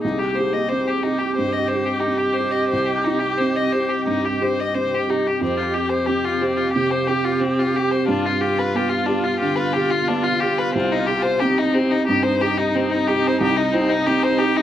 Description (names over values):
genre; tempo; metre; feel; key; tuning
neoclassical piano and strings; 90 BPM; 4/4; rubato; unclear; A4 = 441 Hz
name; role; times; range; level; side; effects
rich violin; melody; 0.0-14.6 s; C4 to Eb5; -22 LUFS; left 4 dB; none
felt-muted upright piano; accompaniment; 0.0-14.6 s; C2 to G4; -23 LUFS; right 2 dB; slapback echo
warm viola; accompaniment; 0.0-14.6 s; Eb4 to G4; -24 LUFS; right 2 dB; slapback echo
granular cloud pad; sustained chords; 0.0-14.6 s; B3 to F5; -28 LUFS; equal; built-in reverb
room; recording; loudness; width
little or no reverb; recorded outdoors, with no room sound; -18 LUFS; side -11 dB against mid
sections
0.0-14.6 A section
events
none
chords
0.0 Cm; 5.4 Fsus2; 8.1 G7; 10.7 Cm